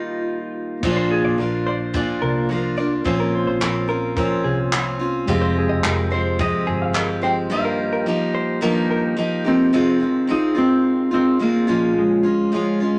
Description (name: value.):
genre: acoustic pop.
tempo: 108 BPM.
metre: 4/4.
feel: straight.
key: unclear.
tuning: A4 = 440 Hz.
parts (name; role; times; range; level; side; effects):
clean lap steel guitar; melody; 0.0-13.0 s; Ab3 to G5; -24 LUFS; equal; none.
picked steel-string acoustic guitar; accompaniment; 0.0-13.0 s; F2 to G4; -23 LUFS; equal; none.
reed electric piano; accompaniment; 0.8-9.8 s; G3 to F5; -33 LUFS; equal; none.
vintage muted fingered electric bass; bass; 0.8-7.5 s; F1 to C2; -28 LUFS; equal; none.
compact cocktail drum kit; drums; 0.8-7.1 s; crash cymbal, handclaps, kick drum; -27 LUFS; equal; none.
direct-recorded clean electric guitar; arpeggios; 1.0-9.0 s; Ab4 to Eb5; -30 LUFS; equal; none.
room: moderate studio reverb, RT60 0.6 s.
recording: none.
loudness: -20 LUFS.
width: mono.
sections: 0.8-9.7 A section; 9.7-13.0 B section.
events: none.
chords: 0.0 Ebadd9; 0.8 Bb; 3.1 Bbmadd9; 5.3 Fmadd9; 7.5 Ebadd9/G; 9.7 Fm7; 11.7 Bbm7.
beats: 0.27 | 0.83 1.39 1.94 2.50 | 3.06 3.62 4.17 4.73 | 5.28 5.84 6.40 6.95 | 7.51 8.07 8.62 9.18 | 9.74 10.29 10.85 11.41 | 11.97 12.53.